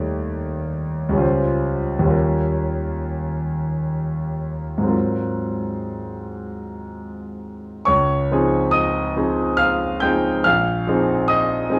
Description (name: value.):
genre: classical, impressionist solo piano.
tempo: 57-76 BPM.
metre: 3/4.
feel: rubato.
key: Db lydian.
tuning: A4 = 440 Hz.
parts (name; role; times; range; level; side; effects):
clear concert grand piano; solo; 0.0-11.8 s; Bb1 to G6; -21 LUFS; equal; none.
room: light reverb.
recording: worn, warbling old tape, cassette tape, warbly pitch drift, small room ambience.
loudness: -21 LUFS.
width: mono.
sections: 0.0-7.9 A section; 7.9-11.8 B section.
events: none.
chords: 0.0 Ebmaj7#11; 1.2 Dbmaj7#11; 2.1 Eb9; 4.9 Ab13; 7.9 Dbmaj9; 10.4 Bb9sus4.